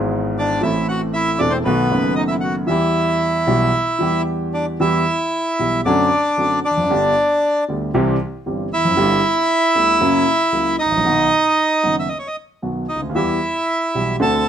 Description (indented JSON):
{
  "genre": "tango",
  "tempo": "115 BPM",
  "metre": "4/4",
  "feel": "rubato",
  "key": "E minor",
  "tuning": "A4 = 440 Hz",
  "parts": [
    { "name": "warm grand piano", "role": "accompaniment", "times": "0.0-14.4 s", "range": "E1 to A4", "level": "-19 LUFS", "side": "equal", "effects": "none" },
    { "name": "bandoneon", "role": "melody", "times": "0.4-14.5 s", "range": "B3 to A5", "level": "-17 LUFS", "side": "right 1 dB", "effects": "none" }
  ],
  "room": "light reverb",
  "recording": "close, detailed microphones",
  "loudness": "-15 LUFS",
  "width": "side -9 dB against mid",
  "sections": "0.0-4.8 A section; 4.8-14.5 B section",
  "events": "none",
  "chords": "0.0 E/G#; 0.6 Am; 1.7 B7; 2.7 Em; 5.8 D7/F#; 6.9 G; 7.9 C; 9.0 G; 10.0 F#7; 11.1 B; 13.2 Em"
}